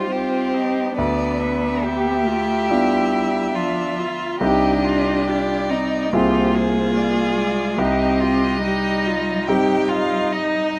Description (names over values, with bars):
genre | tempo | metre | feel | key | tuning
classical, slow romantic movement for piano quintet | 70 BPM | 4/4 | rubato | C minor | A4 = 442 Hz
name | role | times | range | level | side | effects
rich violin | melody | 0.0-10.8 s | Eb4 to B4 | -26 LUFS | equal | none
rich violin | second line | 0.0-10.8 s | C5 to G5 | -30 LUFS | equal | none
warm cello | second line | 0.0-10.7 s | F3 to D4 | -26 LUFS | equal | none
bright concert grand piano | accompaniment | 0.0-10.8 s | C2 to Ab4 | -25 LUFS | equal | none
rich viola | accompaniment | 0.0-10.8 s | D4 to G4 | -28 LUFS | equal | none
room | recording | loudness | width
light reverb | none | -20 LUFS | mono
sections
0.0-10.8 A section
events
none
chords
0.0 Cm; 1.0 Bdim/D; 4.4 Cm; 6.1 Fm/C; 7.8 Cm